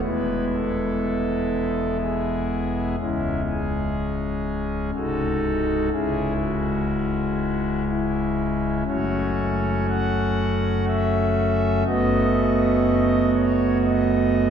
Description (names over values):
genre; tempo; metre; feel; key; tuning
classical, chorale-style piece for pipe organ; 61 BPM; 3/4; rubato; E major; A4 = 441 Hz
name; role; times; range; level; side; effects
pipe organ, foundations; solo; 0.0-14.5 s; B#0 to F#5; -20 LUFS; equal; none
room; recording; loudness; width
wet cathedral reverb, RT60 5.0 s; heard from further back in the room; -20 LUFS; side -8 dB against mid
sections
0.0-14.5 A section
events
none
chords
0.0 E; 3.0 C#5; 4.9 G#7/B#; 5.9 C#m; 8.9 F#m; 11.9 B7/F#